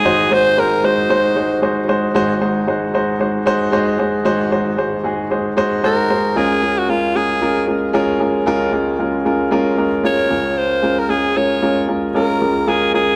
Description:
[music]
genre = pop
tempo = 114 BPM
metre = 4/4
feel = swing 55% on 16ths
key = Db major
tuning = A4 = 439 Hz
[part]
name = raspy alto saxophone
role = melody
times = 0.0-1.6, 5.9-13.2 s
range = F4 to Db5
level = -20 LUFS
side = equal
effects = none
[part]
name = warm baby grand piano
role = accompaniment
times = 0.0-13.2 s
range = Ab1 to C5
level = -18 LUFS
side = equal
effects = none
[sound]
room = moderate lush hall reverb, RT60 2.4 s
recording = none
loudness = -17 LUFS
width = mono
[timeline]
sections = 0.0-2.2 A section; 2.2-6.4 B section; 6.4-13.2 C section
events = none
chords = 0.0 Ab7; 6.4 Db6

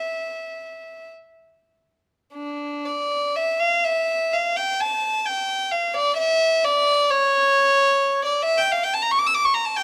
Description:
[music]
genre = classical, free, expressive piece for unaccompanied violin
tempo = 42-70 BPM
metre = 4/4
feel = rubato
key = unclear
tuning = A4 = 435 Hz
[part]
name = warm violin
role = solo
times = 0.0-9.8 s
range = D4 to E6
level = -22 LUFS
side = equal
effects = none
[sound]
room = light reverb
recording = close, detailed microphones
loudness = -21 LUFS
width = mono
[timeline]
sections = 0.0-2.3 A section; 2.3-9.8 B section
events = none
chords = none

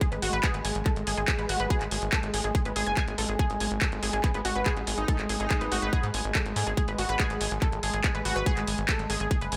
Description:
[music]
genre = psychedelic trance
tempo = 142 BPM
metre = 4/4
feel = straight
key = G# phrygian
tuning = A4 = 440 Hz
[part]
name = pulsing gated texture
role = sustained chords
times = 0.0-9.6 s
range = G#3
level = -38 LUFS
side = equal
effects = chorus, built-in reverb, sidechain pumping
[part]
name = unison pluck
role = riff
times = 0.0-9.6 s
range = F#4 to G#5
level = -34 LUFS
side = equal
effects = sidechain pumping, digital delay
[part]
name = drum and bass drum kit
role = drums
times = 0.0-9.6 s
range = handclaps, hi-hat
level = -34 LUFS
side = equal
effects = none
[part]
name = electronic kick drum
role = drums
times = 0.0-9.4 s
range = none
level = -29 LUFS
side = equal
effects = none
[part]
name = tight sequencer bass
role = bass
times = 0.1-9.6 s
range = F#1 to G#2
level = -35 LUFS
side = equal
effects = tube saturation
[part]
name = metallic wobble bass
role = second line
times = 4.2-6.0 s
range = B3 to D#4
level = -39 LUFS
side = equal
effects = analog chorus, cassette tape, sidechain pumping, high-pass filter, tape echo
[sound]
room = light reverb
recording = none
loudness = -28 LUFS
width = mono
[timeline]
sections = 0.0-9.6 A section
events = none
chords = 0.0 G#5

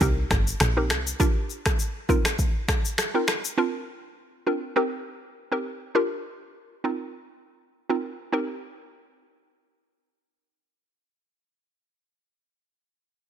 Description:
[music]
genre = afrobeats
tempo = 101 BPM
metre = 4/4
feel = swing 55% on 16ths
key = C minor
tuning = A4 = 439 Hz
[part]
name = hollow square pluck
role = accompaniment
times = 0.0-12.2 s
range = C4 to Bb4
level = -26 LUFS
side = right 1 dB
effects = chorus
[part]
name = woody log drum bass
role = bass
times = 0.0-1.1 s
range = G1 to C2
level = -24 LUFS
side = equal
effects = none
[part]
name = afro-pop drum kit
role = drums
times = 0.0-3.6 s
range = finger snaps, kick drum, rim click, shaker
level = -24 LUFS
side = equal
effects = none
[sound]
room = light reverb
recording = none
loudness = -23 LUFS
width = side -9 dB against mid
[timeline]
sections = 0.0-8.3 A section; 8.3-10.7 B section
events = none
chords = 0.0 Cm7; 1.2 Gm7; 2.1 F7sus4; 3.6 Bbadd9; 4.8 Cm7; 6.0 Gm7; 6.8 F7sus4; 8.3 Cm7

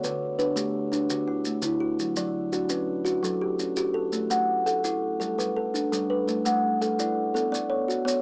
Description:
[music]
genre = southern african traditional, mbira-style interlocking cycle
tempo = 112 BPM (dotted quarters)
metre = 12/8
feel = straight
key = A mixolydian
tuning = A4 = 440 Hz
[part]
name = kalimba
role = arpeggios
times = 0.0-8.2 s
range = D3 to F#5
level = -28 LUFS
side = equal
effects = cassette tape
[part]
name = kalimba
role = arpeggios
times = 0.0-8.2 s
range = D3 to F#5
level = -32 LUFS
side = equal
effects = cassette tape
[part]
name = maracas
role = percussion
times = 0.0-8.2 s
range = none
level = -37 LUFS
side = equal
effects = none
[sound]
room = moderate small room reverb, RT60 0.5 s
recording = home recording on cassette, small speaker sound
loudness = -27 LUFS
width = mono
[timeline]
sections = 0.0-8.2 A section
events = none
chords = 0.0 D; 2.0 F#m; 4.1 A5; 5.2 G; 6.3 A5; 7.3 Bm

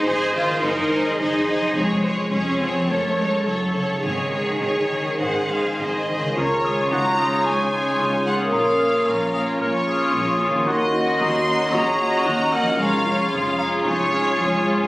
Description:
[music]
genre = classical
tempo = 102-114 BPM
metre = 4/4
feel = straight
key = Db major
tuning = A4 = 437 Hz
[part]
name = clear symphonic violin section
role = melody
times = 0.0-14.6 s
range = Db5 to C6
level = -26 LUFS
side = equal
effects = none
[part]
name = rich symphonic violin section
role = second line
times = 0.0-14.9 s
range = F4 to Eb5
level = -26 LUFS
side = equal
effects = none
[part]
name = rich symphonic viola section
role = accompaniment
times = 0.0-14.9 s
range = Ab3 to Db5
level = -27 LUFS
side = right 1 dB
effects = none
[part]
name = concert harp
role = arpeggios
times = 0.0-14.9 s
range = F2 to Db5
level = -27 LUFS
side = left 1 dB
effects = none
[part]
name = rich symphonic cello section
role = bass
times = 0.0-14.8 s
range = Eb2 to Ab4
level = -26 LUFS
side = equal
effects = none
[part]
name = rich symphonic double bass section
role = bass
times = 0.1-14.8 s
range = F1 to Eb2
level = -33 LUFS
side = equal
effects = none
[part]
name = clear clarinet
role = second line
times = 6.4-14.9 s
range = Db4 to Gb4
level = -29 LUFS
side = equal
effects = none
[part]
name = hollow concert flute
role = second line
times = 6.4-14.9 s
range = Ab5 to F6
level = -28 LUFS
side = equal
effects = none
[part]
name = mellow cor anglais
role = second line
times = 6.4-14.9 s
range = Eb4 to Bb4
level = -25 LUFS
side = equal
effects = none
[part]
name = mellow French horn section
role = sustained chords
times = 6.4-14.9 s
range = Db4 to Gb4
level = -28 LUFS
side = equal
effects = none
[sound]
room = wet recital hall reverb, RT60 1.7 s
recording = recorded on a phone in the room, studio reverb, compression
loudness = -18 LUFS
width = side -19 dB against mid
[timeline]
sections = 0.0-6.4 A section; 6.4-14.9 B section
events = none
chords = 0.0 Ab; 0.6 Ab7/Gb; 1.7 Db/F; 2.9 Gbm; 4.0 Absus4; 5.2 Ab; 6.4 Db; 8.5 Bbm; 10.7 Ebm7; 12.8 Db/F

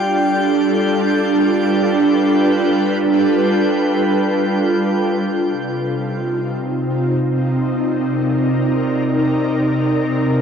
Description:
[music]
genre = ambient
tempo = free time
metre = none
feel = none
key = C dorian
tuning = A4 = 440 Hz
[part]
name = ethereal airy pad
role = sustained chords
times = 0.0-10.4 s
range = C3 to D5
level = -15 LUFS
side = right 1 dB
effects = ensemble chorus, built-in reverb, cassette tape, shimmer reverb
[part]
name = drifting glass-harmonics texture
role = texture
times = 0.0-5.4 s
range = G5 to G6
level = -25 LUFS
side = left 3 dB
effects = chorus, built-in reverb, cassette tape, shimmer reverb
[sound]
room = wet lush hall reverb, RT60 2.8 s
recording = home recording on cassette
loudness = -15 LUFS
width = side -7 dB against mid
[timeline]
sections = 0.0-5.4 A section; 5.4-10.4 B section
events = none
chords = 0.0 G7; 5.4 Cm7

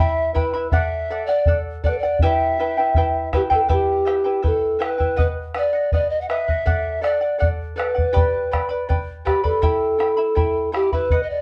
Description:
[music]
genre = andean folk, Andean ensemble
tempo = 81 BPM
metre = 2/4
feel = straight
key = E minor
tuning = A4 = 439 Hz
[part]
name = mellow hollow polished pan flute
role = melody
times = 0.0-11.4 s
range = G4 to F#5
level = -23 LUFS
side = equal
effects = slapback echo
[part]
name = charango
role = accompaniment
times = 0.0-11.4 s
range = E4 to B5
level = -26 LUFS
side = equal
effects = none
[part]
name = bombo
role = percussion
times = 0.4-11.3 s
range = none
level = -25 LUFS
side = equal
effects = none
[sound]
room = moderate small room reverb, RT60 0.5 s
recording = dark, warm production, nothing above 10.5 kHz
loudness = -20 LUFS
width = mono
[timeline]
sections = 0.0-3.7 A section; 3.7-11.4 B section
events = none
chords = 0.0 Em; 0.7 D; 2.2 Em; 5.2 B; 6.7 D; 8.1 G; 9.6 Em

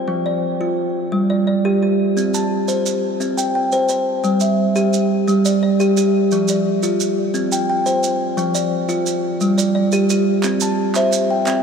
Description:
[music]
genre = southern african traditional, mbira-style interlocking cycle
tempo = 116 BPM (dotted quarters)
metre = 12/8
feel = straight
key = C major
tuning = A4 = 440 Hz
[part]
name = kalimba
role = arpeggios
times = 0.0-11.6 s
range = F3 to A5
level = -16 LUFS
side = equal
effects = none
[part]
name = maracas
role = percussion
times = 2.2-11.6 s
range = none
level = -28 LUFS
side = right 9 dB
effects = none
[part]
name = group handclap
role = percussion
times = 10.4-11.6 s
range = none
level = -29 LUFS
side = right 5 dB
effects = none
[sound]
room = wet cathedral reverb, RT60 7.2 s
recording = in a vast, echoing space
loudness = -16 LUFS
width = side -6 dB against mid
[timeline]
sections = 0.0-10.4 A section; 10.4-11.6 B section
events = none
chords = 0.1 F5; 1.1 G5; 2.2 C5; 4.2 G5; 6.3 Dm/F; 7.3 C5; 8.4 Dm/F; 9.4 G5; 10.4 C

